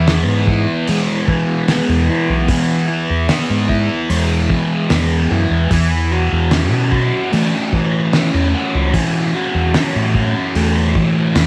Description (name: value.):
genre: psychedelic rock.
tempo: 74 BPM.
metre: 4/4.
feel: straight.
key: E major.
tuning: A4 = 440 Hz.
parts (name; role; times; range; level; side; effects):
fuzz guitar; riff; 0.0-11.5 s; E3 to F#4; -19 LUFS; equal; distortion, phaser.
growling fingered electric bass; bass; 0.0-11.5 s; B1 to E3; -19 LUFS; equal; overdrive.
cloth-damped thuddy drum kit; drums; 0.1-11.5 s; hi-hat, kick drum, snare drum; -23 LUFS; equal; none.
room: light reverb, studio ambience.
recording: none.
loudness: -16 LUFS.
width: mono.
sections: 0.0-11.5 A section.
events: none.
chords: 0.0 E; 5.7 F#m.